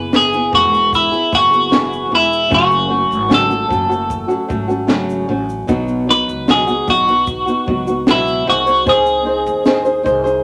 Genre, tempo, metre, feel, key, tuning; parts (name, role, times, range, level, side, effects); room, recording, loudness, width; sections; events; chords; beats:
acoustic pop; 76 BPM; 4/4; straight; E major; A4 = 442 Hz
twelve-string electric guitar; melody; 0.0-10.4 s; E4 to B4; -17 LUFS; equal
nylon-string guitar; accompaniment; 0.0-10.4 s; F#2 to B#4; -20 LUFS; equal
upright bass; bass; 0.0-10.4 s; E1 to D#2; -30 LUFS; equal
compact cocktail drum kit; drums; 0.1-10.4 s; kick drum, shaker, snare drum; -21 LUFS; equal
moderate studio reverb, RT60 0.8 s; -15 LUFS; mono
0.0-10.4 A section
0.0 E; 2.5 F#m; 5.7 B; 8.5 G#/B#
0.14 0.93 1.72 | 2.52 3.31 4.11 4.90 | 5.69 6.49 7.28 8.07 | 8.87 9.66